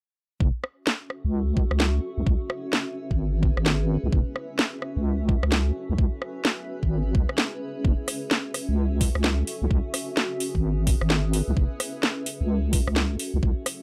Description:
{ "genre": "UK garage, two-step garage", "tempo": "129 BPM", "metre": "4/4", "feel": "swing 62% on 16ths", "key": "F# minor", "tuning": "A4 = 439 Hz", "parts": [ { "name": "deep soft wobble bass", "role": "bass", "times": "0.4-13.5 s", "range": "F#1 to C#2", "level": "-26 LUFS", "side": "equal", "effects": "chorus, sidechain pumping" }, { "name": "electronic kick drum", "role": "drums", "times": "0.4-13.5 s", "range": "none", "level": "-26 LUFS", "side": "equal", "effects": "none" }, { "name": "granular cloud pad", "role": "texture", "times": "1.0-13.8 s", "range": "C#4 to E5", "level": "-37 LUFS", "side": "equal", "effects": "built-in reverb, sidechain pumping" }, { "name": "garage drum kit", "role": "drums", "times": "0.6-13.8 s", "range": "hi-hat, rim click, snare drum", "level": "-27 LUFS", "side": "equal", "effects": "none" } ], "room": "little or no reverb", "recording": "dry, gritty hardware recording", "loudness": "-25 LUFS", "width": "mono", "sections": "0.4-13.8 A section", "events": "none", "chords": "0.4 F#m7; 2.0 C#m7; 4.1 F#m7; 5.8 C#m7; 7.8 F#m7; 9.5 C#m7; 11.6 F#m7; 13.2 C#m7", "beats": "| 0.41 0.87 1.33 1.80 | 2.27 2.73 3.19 3.66 | 4.12 4.59 5.06 5.52 | 5.99 6.45 6.92 7.38 | 7.85 8.31 8.78 9.24 | 9.71 10.17 10.64 11.10 | 11.57 12.03 12.50 12.96 | 13.43" }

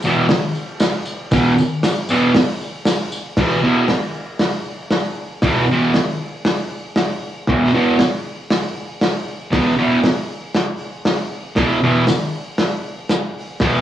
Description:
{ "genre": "garage rock duo or trio", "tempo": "117 BPM", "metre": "4/4", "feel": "straight", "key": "unclear", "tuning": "A4 = 437 Hz", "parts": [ { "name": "thick fuzz guitar", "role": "riff", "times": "0.0-13.8 s", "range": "E2 to E3", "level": "-15 LUFS", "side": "right 1 dB", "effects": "distortion" }, { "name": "tambourine", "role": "percussion", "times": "0.0-3.2, 12.1-13.2 s", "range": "none", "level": "-32 LUFS", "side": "left 3 dB", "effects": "none" }, { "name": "crunchy breakbeat drum kit", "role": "drums", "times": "0.3-13.7 s", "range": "crash cymbal, hi-hat, kick drum, snare drum", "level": "-20 LUFS", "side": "equal", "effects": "cassette tape" } ], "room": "moderate spring reverb, RT60 1.6 s, small room reverb", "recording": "home recording on cassette, small room ambience", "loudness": "-16 LUFS", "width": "side -11 dB against mid", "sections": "0.0-3.4 A section; 3.4-13.8 B section", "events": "none", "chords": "0.0 E5", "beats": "0.29 0.81 | 1.32 1.84 2.35 2.87 | 3.38 3.90 4.41 4.92 | 5.44 5.95 6.47 6.98 | 7.49 8.00 8.51 9.03 | 9.54 10.05 10.56 11.07 | 11.57 12.08 12.59 13.10 | 13.61" }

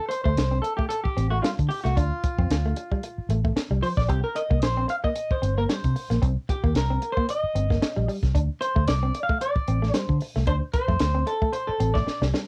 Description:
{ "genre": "funk", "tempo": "113 BPM", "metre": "4/4", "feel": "swing 56% on 16ths", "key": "unclear", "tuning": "A4 = 440 Hz", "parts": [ { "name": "electric guitar at the edge of break-up", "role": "accompaniment", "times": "0.0-12.2 s", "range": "F4 to F5", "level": "-30 LUFS", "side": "equal", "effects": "cassette tape" }, { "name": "electric guitar through a small old amp", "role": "riff", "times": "0.1-12.4 s", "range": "F3 to D4", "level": "-33 LUFS", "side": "equal", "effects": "cassette tape" }, { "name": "compact cocktail drum kit", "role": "drums", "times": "0.1-12.5 s", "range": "hi-hat, kick drum, snare drum", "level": "-29 LUFS", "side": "equal", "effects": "none" }, { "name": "vintage muted fingered electric bass", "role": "bass", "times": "0.3-12.3 s", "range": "G1 to D3", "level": "-27 LUFS", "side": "equal", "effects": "none" } ], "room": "light reverb", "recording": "home recording on cassette", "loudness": "-25 LUFS", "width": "mono", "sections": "0.0-12.5 A section", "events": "clean electric guitar solo 0.0-12.5; drum fill 12.1-12.5", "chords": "0.0 Dm7; 4.1 Cm7; 8.3 D7(no3)", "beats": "0.37 0.91 1.44 | 1.97 2.50 3.04 3.57 | 4.10 4.63 5.16 5.69 | 6.22 6.76 7.29 7.82 | 8.35 8.88 9.41 9.94 | 10.47 11.01 11.54 12.07" }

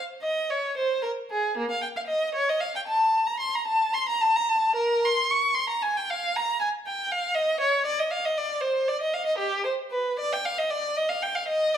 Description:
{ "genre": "classical, baroque-style suite movement for unaccompanied violin", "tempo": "77 BPM (dotted quarters)", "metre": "12/8", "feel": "rubato", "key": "unclear", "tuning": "A4 = 443 Hz", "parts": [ { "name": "rich violin", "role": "solo", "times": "0.0-11.8 s", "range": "Bb3 to Db6", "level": "-23 LUFS", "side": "equal", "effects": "none" } ], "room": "moderate recital hall reverb, RT60 1.4 s", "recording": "minimal, uncompressed stereo recording", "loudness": "-23 LUFS", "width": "side -9 dB against mid", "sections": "0.0-11.8 A section", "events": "none", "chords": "none", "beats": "0.76 | 1.56 2.35 3.14 3.94 | 4.77 5.57 6.34 7.11 | 7.86 8.63 9.40 10.19 | 10.96 11.74" }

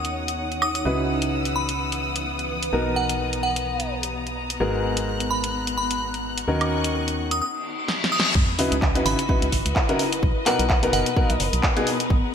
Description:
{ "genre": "piano house", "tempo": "128 BPM", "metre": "4/4", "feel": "swing 56% on 16ths", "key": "C# dorian", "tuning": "A4 = 441 Hz", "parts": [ { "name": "clear studio violin section", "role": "sustained chords", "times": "0.0-12.3 s", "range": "B3 to F#6", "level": "-31 LUFS", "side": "left 2 dB", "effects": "sidechain pumping" }, { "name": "warm grand piano", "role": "riff", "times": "0.0-11.9 s", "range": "G#2 to B4", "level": "-26 LUFS", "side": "left 1 dB", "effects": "sidechain pumping, digital delay" }, { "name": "organ-like FM bass", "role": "bass", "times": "0.0-12.2 s", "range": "F#1 to D#2", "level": "-29 LUFS", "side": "equal", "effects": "sidechain pumping" }, { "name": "house drum kit", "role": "drums", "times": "0.0-12.1 s", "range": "crash cymbal, handclaps, hi-hat, snare drum, woodblock", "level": "-26 LUFS", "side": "equal", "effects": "gated reverb" }, { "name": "granular cloud pad", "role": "texture", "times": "0.0-12.3 s", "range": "E3 to D#6", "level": "-32 LUFS", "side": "equal", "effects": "built-in reverb, sidechain pumping" }, { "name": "glassy synth bell", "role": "melody", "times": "0.6-11.4 s", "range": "F#5 to D#6", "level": "-29 LUFS", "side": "equal", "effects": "chorus, digital delay" }, { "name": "reverse cymbal and sub drop", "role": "sound effects", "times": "7.6-10.2 s", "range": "none", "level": "-28 LUFS", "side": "left 2 dB", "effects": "none" }, { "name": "electronic kick drum", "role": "drums", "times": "8.4-12.2 s", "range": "none", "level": "-22 LUFS", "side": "equal", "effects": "none" } ], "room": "moderate lush hall reverb, RT60 2.6 s", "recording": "bright 1980s-style digital production", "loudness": "-21 LUFS", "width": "side -8 dB against mid", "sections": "0.0-8.4 A section; 8.4-12.3 B section", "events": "reverse cymbal 7.6-8.4; drum fill 7.9-8.4; drop 8.4-12.3; impact 8.4-10.2", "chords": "0.0 D#m7; 0.9 C#m11; 2.7 Bmaj7; 4.6 G#m9; 6.5 D#m7; 8.4 C#m11; 10.2 Bmaj7", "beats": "0.38 | 0.85 1.32 1.79 2.26 | 2.73 3.20 3.67 4.13 | 4.60 5.07 5.54 6.01 | 6.48 6.95 7.42 7.88 | 8.35 8.82 9.29 9.76 | 10.23 10.70 11.16 11.63 | 12.10" }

